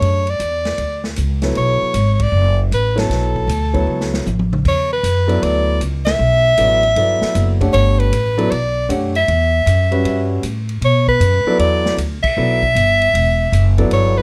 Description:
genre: modal jazz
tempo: 155 BPM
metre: 4/4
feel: swing 66% on 8ths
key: E dorian from 4.6 s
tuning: A4 = 436 Hz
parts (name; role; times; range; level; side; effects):
- warm soprano saxophone; melody; 0.0-14.2 s; A4 to E5; -19 LUFS; equal; none
- warm concert grand piano; accompaniment; 0.0-14.2 s; F#3 to F#5; -23 LUFS; equal; none
- upright bass; bass; 0.0-14.2 s; E1 to B2; -20 LUFS; equal; none
- vintage drum kit; drums; 0.0-14.0 s; crash cymbal, hi-hat, kick drum, ride cymbal, snare drum, toms; -29 LUFS; equal; none
room: light reverb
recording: none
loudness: -16 LUFS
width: mono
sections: 0.0-4.6 A section; 4.6-14.2 B section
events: band accent 2.1, 6.0, 12.2; drum fill 3.9-4.6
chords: 0.0 Bm9; 4.6 Em9

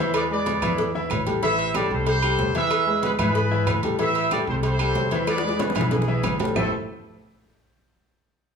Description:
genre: latin, salsa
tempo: 187 BPM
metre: 4/4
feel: straight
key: unclear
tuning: A4 = 440 Hz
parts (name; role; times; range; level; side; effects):
- clear trumpet section; melody; 0.0-6.7 s; B3 to E5; -26 LUFS; right 2 dB; none
- bright grand piano; accompaniment; 0.0-6.7 s; E3 to E5; -25 LUFS; left 2 dB; none
- upright bass; bass; 0.0-6.7 s; A1 to A2; -28 LUFS; equal; none
- agogo bells and timbales; percussion; 0.1-6.6 s; none; -29 LUFS; right 4 dB; none
- claves; percussion; 0.1-6.6 s; none; -37 LUFS; right 2 dB; none
- congas; percussion; 0.1-6.6 s; none; -33 LUFS; equal; none
- cowbell and bongos; percussion; 0.1-6.6 s; none; -31 LUFS; left 3 dB; none
room: moderate large studio reverb, RT60 1.2 s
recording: band playing live in one room, small room reverb, faint mains hum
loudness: -20 LUFS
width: side -6 dB against mid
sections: 0.0-6.6 A section; 6.6-7.8 B section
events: drum fill 5.3-6.6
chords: 0.1 E7; 1.4 Am7; 2.7 E7; 4.0 Am7; 5.3 E7; 6.6 Am7

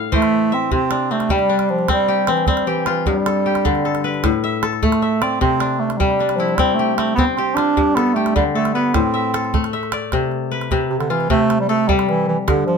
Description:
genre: west african traditional, West African string and xylophone music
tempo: 102 BPM (dotted quarters)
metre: 12/8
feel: straight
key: C major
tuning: A4 = 440 Hz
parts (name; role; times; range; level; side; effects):
- kora; arpeggios; 0.0-12.8 s; G2 to F5; -19 LUFS; left 5 dB; none
- clear bass clarinet; melody; 0.1-12.8 s; C3 to D4; -18 LUFS; right 4 dB; none
- calabash; percussion; 0.1-12.7 s; none; -23 LUFS; right 4 dB; none
room: moderate studio reverb, RT60 0.6 s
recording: minimal, uncompressed stereo recording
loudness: -16 LUFS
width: side -6 dB against mid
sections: 0.7-10.1 A section; 10.1-12.8 B section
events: none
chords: 0.0 Am; 0.7 C; 3.1 G; 4.2 A5; 5.4 C; 7.8 G; 8.9 Am; 10.1 C

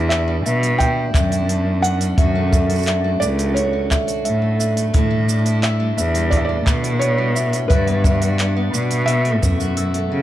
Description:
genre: folktronica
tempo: 87 BPM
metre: 4/4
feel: straight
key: E dorian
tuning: A4 = 439 Hz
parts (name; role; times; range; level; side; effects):
- felt-muted upright piano; melody; 0.0-10.1 s; B4 to G5; -25 LUFS; right 1 dB; plate reverb, ping-pong delay
- picked steel-string acoustic guitar; arpeggios; 0.0-10.2 s; E2 to F#4; -26 LUFS; right 1 dB; plate reverb, ping-pong delay
- clear cello; bass; 0.0-10.2 s; C#2 to C#3; -19 LUFS; equal; none
- organic electronic drum kit; drums; 0.1-10.1 s; handclaps, hi-hat, shaker, toms; -25 LUFS; right 2 dB; none
- music box; second line; 0.5-10.1 s; B4 to E6; -26 LUFS; left 1 dB; plate reverb, digital delay
- kick drum; drums; 0.8-9.6 s; none; -19 LUFS; equal; none
room: light reverb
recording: dark, warm production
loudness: -16 LUFS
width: side -13 dB against mid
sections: 0.0-10.2 A section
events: none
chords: 0.0 Em7; 2.2 Dmaj7; 4.9 A7sus4; 7.7 Gmaj7; 9.1 B7sus4

